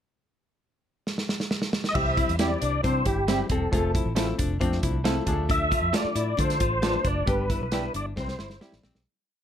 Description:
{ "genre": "uptempo 1960s-style soul", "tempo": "135 BPM", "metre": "4/4", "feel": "straight", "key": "C major", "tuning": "A4 = 440 Hz", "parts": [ { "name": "warm soul drum kit", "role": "drums", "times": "1.1-9.1 s", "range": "crash cymbal, hi-hat, kick drum, snare drum", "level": "-28 LUFS", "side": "right 1 dB", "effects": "none" }, { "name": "tonewheel organ", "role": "melody", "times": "1.9-8.6 s", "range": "G4 to E5", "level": "-28 LUFS", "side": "equal", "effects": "chorus vibrato, slow rotary speaker" }, { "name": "clear concert grand piano", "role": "accompaniment", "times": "1.9-8.9 s", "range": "E3 to D5", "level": "-32 LUFS", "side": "left 2 dB", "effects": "none" }, { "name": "archtop guitar, miked and amplified", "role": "riff", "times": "2.0-9.0 s", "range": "C4 to G4", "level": "-32 LUFS", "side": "left 9 dB", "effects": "none" }, { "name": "vintage muted fingered electric bass", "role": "bass", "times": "2.0-9.0 s", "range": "E1 to D3", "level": "-29 LUFS", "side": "equal", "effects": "none" }, { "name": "electric guitar through a small old amp", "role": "stabs", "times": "2.4-8.7 s", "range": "G3 to A4", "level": "-32 LUFS", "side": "right 6 dB", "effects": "none" } ], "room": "light reverb", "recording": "none", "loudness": "-23 LUFS", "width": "side -9 dB against mid", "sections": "0.2-1.9 pickup bar; 1.9-9.1 A section", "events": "drum fill 1.1-1.9, 8.2-9.1; fade-out 7.3-9.1", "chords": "0.2 N.C.; 1.9 C; 3.7 F; 5.3 Dm; 7.3 G; 8.2 C", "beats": "| 0.17 0.62 1.06 1.51 | 1.95 2.39 2.84 3.28 | 3.72 4.17 4.61 5.05 | 5.50 5.94 6.38 6.83 | 7.28 7.72 8.17 8.61" }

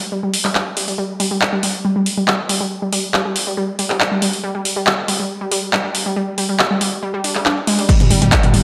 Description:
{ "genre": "driving peak-time techno", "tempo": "139 BPM", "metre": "4/4", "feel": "straight", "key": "unclear", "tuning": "A4 = 438 Hz", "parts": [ { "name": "unison pluck", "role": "riff", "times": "0.1-8.6 s", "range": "G3 to D4", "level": "-22 LUFS", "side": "equal", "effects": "tube saturation, sidechain pumping, delay" }, { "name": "techno drum kit", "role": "drums", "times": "0.3-8.6 s", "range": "crash cymbal, handclaps, hi-hat, toms", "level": "-20 LUFS", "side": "equal", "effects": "gated reverb" }, { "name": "electronic kick drum", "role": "drums", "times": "7.9-8.4 s", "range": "none", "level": "-16 LUFS", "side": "equal", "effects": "none" }, { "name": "growling 808-style bass", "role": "bass", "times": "8.0-8.6 s", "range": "G1", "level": "-21 LUFS", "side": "equal", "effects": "tube saturation, sidechain pumping, low-pass filter" } ], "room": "moderate lush hall reverb, RT60 1.8 s, digital ambience", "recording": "bright 1980s-style digital production", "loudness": "-18 LUFS", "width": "mono", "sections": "0.0-7.9 A section", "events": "filter sweep on synth arpeggio sound 0.0-7.9", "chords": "0.0 G5", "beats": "0.12 0.55 | 0.98 1.42 1.85 2.28 | 2.71 3.14 3.57 4.00 | 4.44 4.87 5.30 5.73 | 6.16 6.59 7.03 7.46 | 7.89 8.32" }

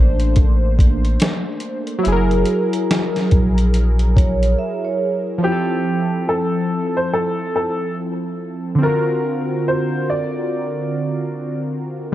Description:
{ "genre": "lo-fi hip hop", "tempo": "71 BPM", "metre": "4/4", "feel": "swing 62% on 16ths", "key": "F major", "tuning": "A4 = 440 Hz", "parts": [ { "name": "warm analog keys", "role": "accompaniment", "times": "0.0-12.1 s", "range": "D3 to C5", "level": "-20 LUFS", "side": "equal", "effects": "chorus, phaser, cassette tape, low-pass filter" }, { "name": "soft dub sub bass", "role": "bass", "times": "0.0-4.6 s", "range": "Gb1 to Bb1", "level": "-17 LUFS", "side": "equal", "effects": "none" }, { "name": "boom bap sampler-style drum kit", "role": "drums", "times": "0.2-4.6 s", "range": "hi-hat, kick drum, snare drum", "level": "-16 LUFS", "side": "equal", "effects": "none" }, { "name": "vibraphone with soft mallets", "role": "second line", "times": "4.2-5.4 s", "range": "Db5 to Fb5", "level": "-23 LUFS", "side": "right 5 dB", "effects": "low-pass filter, analog delay" }, { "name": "warm upright piano", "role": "melody", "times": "5.4-11.6 s", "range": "G4 to D5", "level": "-22 LUFS", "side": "equal", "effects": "low-pass filter, analog delay" } ], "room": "light reverb, digital ambience", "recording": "dark, warm production", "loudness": "-16 LUFS", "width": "side -13 dB against mid", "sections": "0.0-5.4 A section; 5.4-12.1 B section", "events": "break 4.6-5.4", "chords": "0.0 Bbmaj9; 2.1 Gb9; 5.4 Fmaj7; 8.8 D7alt", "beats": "0.36 1.21 | 2.06 2.90 3.75 4.59 | 5.44 6.28 7.13 7.97 | 8.82 9.66 10.51 11.35" }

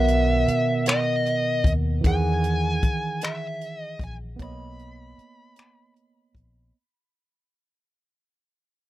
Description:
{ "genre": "slow six-eight R&B", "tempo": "51 BPM (dotted quarters)", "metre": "6/8", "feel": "straight", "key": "B major", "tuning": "A4 = 439 Hz", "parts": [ { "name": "high-gain lead guitar", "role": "melody", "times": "0.0-5.9 s", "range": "D#5 to B5", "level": "-26 LUFS", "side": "left 2 dB", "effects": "distortion" }, { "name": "barky tine electric piano", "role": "accompaniment", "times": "0.0-6.8 s", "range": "B2 to F#5", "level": "-26 LUFS", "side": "right 4 dB", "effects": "overdrive" }, { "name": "vintage muted fingered electric bass", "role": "bass", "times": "0.0-6.7 s", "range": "A#1 to E2", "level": "-25 LUFS", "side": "left 1 dB", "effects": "none" }, { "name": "compact cocktail drum kit", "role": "drums", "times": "0.1-6.5 s", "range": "finger snaps, hi-hat, kick drum", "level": "-25 LUFS", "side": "left 1 dB", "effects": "none" } ], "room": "little or no reverb", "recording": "dry, close 1970s-style studio recording", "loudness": "-21 LUFS", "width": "side -15 dB against mid", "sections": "0.0-6.7 A section", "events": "fade-out 0.0-6.7", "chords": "0.0 Bmaj7; 2.0 Emaj9; 4.4 Bmaj9", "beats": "0.86 | 2.04 3.21 | 4.39 5.57" }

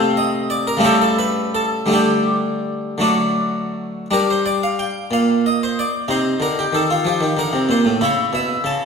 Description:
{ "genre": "classical, baroque-style suite movement for harpsichord", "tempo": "52-64 BPM (dotted quarters)", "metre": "6/8", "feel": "rubato", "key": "G minor", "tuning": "A4 = 442 Hz", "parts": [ { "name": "harpsichord", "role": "solo", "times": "0.0-8.9 s", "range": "A2 to A5", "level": "-16 LUFS", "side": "equal", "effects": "none" } ], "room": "wet scoring stage reverb, RT60 1.8 s", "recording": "recorded in a church or concert hall", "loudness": "-16 LUFS", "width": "side -5 dB against mid", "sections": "0.0-4.1 A section; 4.1-8.9 B section", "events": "none", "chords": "0.0 Cm13; 0.8 A7/C#; 1.9 Dsus4; 3.0 D; 4.1 G5; 5.1 N.C.; 6.1 Cm; 8.0 B9sus4", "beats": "0.83 | 1.91 3.03 | 4.11 5.11 | 6.09 7.04 | 8.00" }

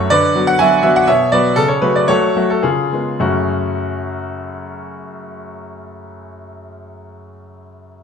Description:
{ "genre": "classical-period piano sonatina", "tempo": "102-127 BPM", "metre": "3/4", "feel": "rubato", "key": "F# minor", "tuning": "A4 = 440 Hz", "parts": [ { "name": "clear concert grand piano", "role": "solo", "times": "0.0-8.0 s", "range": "F#2 to G#5", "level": "-15 LUFS", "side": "equal", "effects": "none" } ], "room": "wet recital hall reverb, RT60 1.3 s", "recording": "minimal, uncompressed stereo recording", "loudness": "-13 LUFS", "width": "side -7 dB against mid", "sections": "0.0-3.2 A section; 3.2-6.5 B section", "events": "slowing down 0.0-3.2", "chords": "0.1 Bm/D; 1.1 Bm; 1.6 F#m/C#; 2.6 C#7; 3.2 F#m", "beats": "| 0.11 0.59 1.07 | 1.58 2.10 2.64 | 3.22 3.77 4.33 | 4.89 5.44 6.00" }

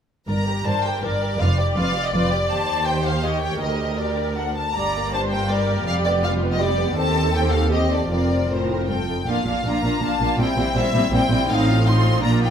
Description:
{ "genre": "quick classical-period movement for string orchestra", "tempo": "162 BPM", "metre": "3/4", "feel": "rubato", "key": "G minor, Bb major from 7.0 s", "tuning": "A4 = 444 Hz", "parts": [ { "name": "warm symphonic violin section", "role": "melody", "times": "0.3-12.5 s", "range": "C5 to C6", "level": "-25 LUFS", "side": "left 3 dB", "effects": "none" }, { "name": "rich studio violin section", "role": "second line", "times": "0.3-12.5 s", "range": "G3 to F5", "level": "-26 LUFS", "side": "left 2 dB", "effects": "none" }, { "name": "rich symphonic cello section", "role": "bass", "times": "0.3-12.5 s", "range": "D2 to Bb2", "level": "-25 LUFS", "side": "right 1 dB", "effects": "none" }, { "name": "rich symphonic double bass section", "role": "bass", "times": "0.3-12.5 s", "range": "F1 to Eb2", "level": "-25 LUFS", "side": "right 1 dB", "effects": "none" }, { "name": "clear symphonic viola section", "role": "accompaniment", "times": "0.7-12.5 s", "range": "G3 to D5", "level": "-25 LUFS", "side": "right 2 dB", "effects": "none" } ], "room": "moderate recital hall reverb, RT60 1.5 s", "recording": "none", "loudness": "-18 LUFS", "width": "side -8 dB against mid", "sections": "0.3-9.3 A section; 9.3-12.5 B section", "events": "none", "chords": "0.3 Gm; 1.4 G7/F; 2.5 Cm/Eb; 3.2 Eb7; 3.6 Gm/D; 4.8 Gm; 5.9 G7/F; 7.0 Cm/Eb; 8.1 Fsus4; 8.9 F; 9.3 Bb; 10.4 C7/Bb; 11.5 F7/A", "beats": "| 0.29 0.66 1.04 | 1.40 1.77 2.13 | 2.50 2.87 3.24 | 3.61 3.99 4.37 | 4.75 5.13 5.50 | 5.86 6.23 6.60 | 6.96 7.33 7.71 | 8.09 8.49 8.88 | 9.28 9.65 10.02 | 10.39 10.75 11.12 | 11.48 11.85 12.22" }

